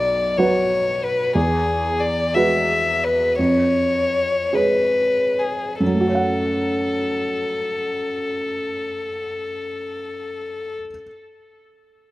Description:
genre	neoclassical piano and strings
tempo	45-62 BPM (dotted quarters)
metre	6/8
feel	rubato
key	F# minor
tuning	A4 = 440 Hz
part	warm violin	melody	0.0-10.7 s	G#4 to E5	-21 LUFS	left 2 dB	tape echo
part	dark baby grand piano	accompaniment	0.0-11.1 s	B1 to F#5	-22 LUFS	right 2 dB	none
room	light reverb, small room ambience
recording	rough home demo mix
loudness	-18 LUFS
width	side -17 dB against mid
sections	0.0-5.8 A section; 5.8-10.9 B section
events	slowing down 0.4-5.8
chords	0.0 Bm; 1.3 Eadd9; 3.4 C#/E#; 5.8 F#m

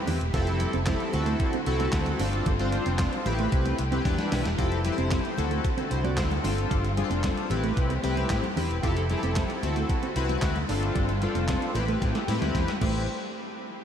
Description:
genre	early-eighties boogie funk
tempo	113 BPM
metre	4/4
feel	straight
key	A minor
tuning	A4 = 439 Hz
part	chorused polysynth	accompaniment	0.0-13.1 s	B3 to D5	-30 LUFS	left 3 dB	none
part	warm studio string section	sustained chords	0.0-13.1 s	D3 to C5	-35 LUFS	right 1 dB	none
part	mellow electric guitar	riff	0.1-13.0 s	G3 to F4	-35 LUFS	right 6 dB	ensemble chorus
part	fingered electric bass	bass	0.1-13.1 s	E1 to A2	-28 LUFS	equal	none
part	clean 12-bit digital drum machine	drums	0.1-12.9 s	crash cymbal, handclaps, hi-hat, kick drum, snare drum	-31 LUFS	equal	none
part	congas	percussion	0.1-13.1 s	none	-38 LUFS	left 1 dB	none
room	moderate huge ambient reverb, RT60 7.9 s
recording	dreamy mix soaked in reverb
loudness	-24 LUFS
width	side -8 dB against mid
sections	0.0-4.6 A section; 4.6-13.1 B section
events	drum fill 4.1-4.6, 12.0-13.1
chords	0.3 Fmaj7; 1.1 D7; 2.2 G7sus4; 3.3 Am7; 4.1 Em7; 4.6 Fmaj7; 5.4 D7; 6.4 G7sus4; 7.5 Am7; 8.8 Fmaj7; 9.6 D7; 10.7 G7sus4; 11.8 Am7; 13.1 N.C.

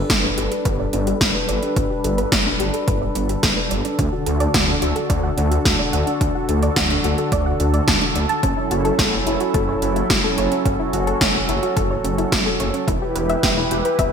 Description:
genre	synthwave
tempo	108 BPM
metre	4/4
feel	straight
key	unclear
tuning	A4 = 440 Hz
part	warm analog pad	sustained chords	0.0-14.1 s	D3 to B4	-23 LUFS	right 1 dB	chorus, sidechain pumping
part	soft round pluck	arpeggios	0.0-14.1 s	C#4 to A5	-25 LUFS	left 1 dB	chorus, ping-pong delay
part	wide detuned saw bass	bass	0.0-14.1 s	E1 to D2	-23 LUFS	equal	chorus, sidechain pumping
part	80s electronic pad drums	drums	0.1-14.1 s	hi-hat, snare drum	-21 LUFS	equal	overdrive, gated reverb
part	electronic kick drum	drums	0.1-14.1 s	none	-24 LUFS	equal	overdrive
room	moderate lush hall reverb, RT60 1.7 s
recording	bright 1980s-style digital production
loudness	-17 LUFS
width	side -7 dB against mid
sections	0.0-14.1 A section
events	none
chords	0.0 Gadd9; 4.0 D; 8.4 F#m7; 12.9 Em

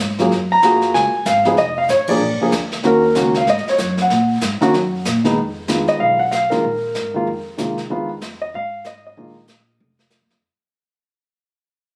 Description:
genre	jazz piano trio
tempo	190 BPM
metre	4/4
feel	swing 61% on 8ths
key	unclear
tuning	A4 = 436 Hz
part	dark grand piano	melody	0.0-10.1 s	Eb3 to Bb5	-18 LUFS	equal	none
part	upright bass	bass	0.0-10.4 s	F1 to C3	-26 LUFS	equal	none
part	vintage brush drum kit	drums	0.2-10.7 s	brushed snare drum, hi-hat, kick drum, ride cymbal, snare drum	-29 LUFS	equal	none
room	moderate studio reverb, RT60 0.5 s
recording	recorded on a phone in the room, studio ambience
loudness	-17 LUFS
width	mono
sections	0.0-5.4 A section; 5.4-10.4 B section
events	band accent 2.1; fade-out 5.4-10.4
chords	0.3 Gbmaj9; 1.6 F7b13; 2.2 Bb7; 2.8 Ebm7; 5.4 Fm7b5; 6.6 Bb7sus4; 7.9 Fm7; 9.2 Bbsus4

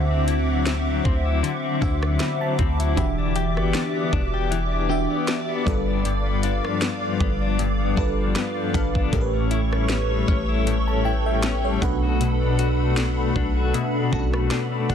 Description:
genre	contemporary R&B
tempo	78 BPM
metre	4/4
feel	swing 54% on 16ths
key	E minor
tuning	A4 = 440 Hz
part	FM electric piano with soft pad layer	accompaniment	0.0-14.9 s	A2 to B5	-26 LUFS	right 2 dB	chorus, phaser
part	hollow soft pad	sustained chords	0.0-14.9 s	C4 to D6	-29 LUFS	right 1 dB	ensemble chorus
part	direct-recorded clean electric guitar	arpeggios	0.0-14.9 s	G2 to G4	-26 LUFS	left 8 dB	tremolo
part	warm 808-style bass	bass	0.0-14.9 s	E1 to D2	-24 LUFS	equal	none
part	trap drum kit	drums	0.3-14.9 s	hi-hat, kick drum, rim click, snare drum	-27 LUFS	equal	none
part	glassy wavetable pluck	texture	1.1-3.3, 8.7-14.9 s	C5 to F#5	-40 LUFS	right 1 dB	chorus, ping-pong delay
room	little or no reverb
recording	dense, heavily limited modern master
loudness	-20 LUFS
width	side -8 dB against mid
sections	0.0-14.9 A section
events	none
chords	0.0 D9; 3.0 Em7; 5.7 G7; 9.1 A7; 11.8 Bm7

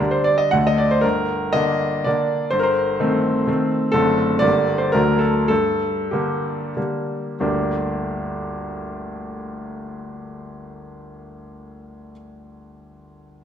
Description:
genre	classical, romantic triple-time dance for piano with dotted rhythms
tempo	85-134 BPM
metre	3/4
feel	rubato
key	G minor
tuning	A4 = 440 Hz
part	bright baby grand piano	solo	0.0-13.4 s	F#1 to F#5	-19 LUFS	equal	none
room	wet recital hall reverb, RT60 1.5 s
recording	none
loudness	-18 LUFS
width	side -9 dB against mid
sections	0.0-7.4 A section; 7.4-11.3 B section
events	slowing down 3.2-7.4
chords	0.0 Gm/D; 0.5 D5; 1.0 Gm; 2.5 Am7b5/G; 3.9 D7/F#; 4.4 Gm; 5.0 D; 5.5 Gm

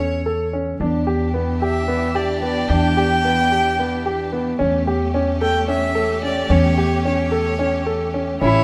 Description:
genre	contemporary instrumental, chamber music in an uneven meter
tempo	221 BPM (eighths)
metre	7/8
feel	straight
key	unclear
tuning	A4 = 440 Hz
part	rich violin	melody	0.0-8.6 s	C#5 to G5	-25 LUFS	equal	none
part	warm grand piano	arpeggios	0.0-8.6 s	B3 to A4	-23 LUFS	equal	none
part	upright bass	bass	0.0-8.6 s	A1 to E2	-24 LUFS	equal	none
part	clear studio string section	sustained chords	0.8-8.6 s	E3 to G4	-30 LUFS	equal	none
part	rich cello	second line	8.4-8.6 s	E4	-20 LUFS	equal	none
room	moderate recital hall reverb, RT60 1.6 s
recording	none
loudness	-19 LUFS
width	mono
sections	0.0-8.4 A section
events	none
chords	0.0 A/E; 0.8 Em7; 4.6 A7/E

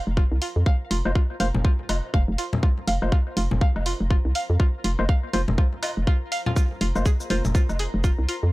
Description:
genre	minimal techno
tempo	122 BPM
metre	4/4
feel	swing 59% on 16ths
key	unclear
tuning	A4 = 440 Hz
part	string-like resonator pluck	riff	0.0-8.4 s	F4 to F5	-32 LUFS	right 1 dB	chorus, phaser, sidechain pumping, analog delay
part	granular cloud pad	texture	0.0-8.5 s	F4 to Bb5	-42 LUFS	left 1 dB	built-in reverb, sidechain pumping
part	hollow knocking FM bass	bass	0.1-8.5 s	F1 to F2	-23 LUFS	equal	tube saturation, sidechain pumping
part	electronic kick drum	drums	0.2-8.2 s	none	-20 LUFS	equal	overdrive
part	electronic hi-hat and cabasa	drums	0.4-8.4 s	none	-33 LUFS	right 1 dB	none
part	percussive organ stab	stabs	1.1-7.4 s	Bb3 to C5	-32 LUFS	left 3 dB	chorus, cassette tape, tape echo
part	woodblock and congas	percussion	1.1-7.8 s	none	-30 LUFS	left 2 dB	tape echo
room	little or no reverb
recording	dry, gritty hardware recording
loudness	-20 LUFS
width	side -19 dB against mid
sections	0.0-8.5 A section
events	fade-in on ambient pad 0.0-8.5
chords	0.0 Fsus4

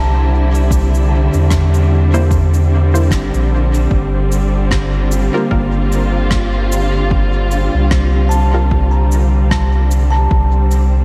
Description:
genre	ambient dub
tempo	75 BPM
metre	4/4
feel	swing 57% on 16ths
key	G dorian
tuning	A4 = 440 Hz
part	dark studio string section	sustained chords	0.0-11.0 s	D3 to F4	-21 LUFS	equal	none
part	kalimba	arpeggios	0.0-11.0 s	Bb3 to Bb5	-27 LUFS	equal	tape echo
part	warm sub bass	bass	0.0-11.0 s	G1 to E2	-16 LUFS	equal	none
part	cabasa and rim click	drums	0.5-10.9 s	none	-29 LUFS	equal	dub echo
part	electronic kick drum	drums	0.7-10.5 s	none	-20 LUFS	equal	overdrive
part	filtered dub chord stab	stabs	2.1-8.8 s	G3 to C5	-27 LUFS	equal	chorus, vintage 12-bit sampler grit, dub echo
room	studio ambience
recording	none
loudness	-14 LUFS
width	mono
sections	0.0-3.9 A section; 3.9-11.0 B section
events	filter sweep on kalimba 0.0-3.9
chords	0.0 C7; 3.9 Gm7; 10.3 C5

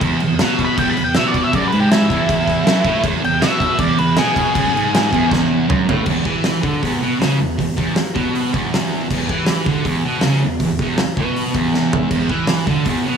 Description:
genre	garage rock duo or trio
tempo	158 BPM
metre	4/4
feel	straight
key	E major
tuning	A4 = 440 Hz
part	thick fuzz guitar	riff	0.0-13.2 s	E2 to E3	-17 LUFS	right 1 dB	distortion
part	oversized low-tuned drum kit	drums	0.0-13.0 s	crash cymbal, hi-hat, kick drum, snare drum, toms	-19 LUFS	equal	none
part	octave-fuzz lead guitar	melody	0.6-5.3 s	E4 to B5	-19 LUFS	left 1 dB	distortion
room	light reverb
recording	small room ambience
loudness	-15 LUFS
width	side -7 dB against mid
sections	0.0-6.1 A section; 6.1-13.2 B section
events	lead electric guitar solo 0.0-6.1; drum fill 5.3-6.1, 11.7-12.1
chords	0.0 E; 6.1 E5

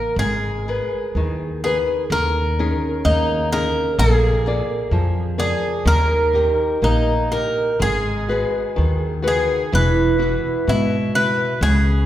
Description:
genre	fado-style ballad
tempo	63 BPM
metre	2/4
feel	rubato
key	G# minor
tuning	A4 = 440 Hz
part	Irish bouzouki	melody	0.0-12.1 s	D#4 to B4	-21 LUFS	equal	tape echo
part	flamenco guitar	accompaniment	0.0-12.1 s	B2 to D5	-22 LUFS	left 1 dB	none
part	upright bass	bass	0.2-12.1 s	E1 to G#2	-21 LUFS	equal	none
room	wet recital hall reverb, RT60 1.7 s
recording	heard from further back in the room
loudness	-17 LUFS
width	side -12 dB against mid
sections	0.2-12.1 A section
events	none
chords	0.2 G#madd9; 2.1 D#7sus4; 4.0 A#7; 5.9 D#; 7.8 G#m7; 9.7 Esus2

